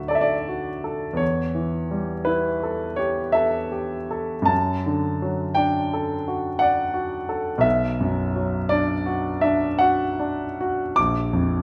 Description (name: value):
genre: classical, romantic nocturne for solo piano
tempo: 55 BPM (dotted quarters)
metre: 9/8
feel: uneven beats, rubato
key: D major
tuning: A4 = 440 Hz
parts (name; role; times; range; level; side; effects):
- clear concert grand piano; solo; 0.0-11.6 s; Bb1 to D6; -23 LUFS; equal; none
room: moderate recital hall reverb, RT60 1.6 s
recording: none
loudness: -23 LUFS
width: mono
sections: 0.0-11.6 A section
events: none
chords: 0.0 D; 1.2 A7/E; 4.5 D/F#; 7.6 Bm; 11.0 Bb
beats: 0.12 | 1.21 2.27 3.35 | 4.51 5.59 6.62 | 7.65 8.71 9.80 | 10.97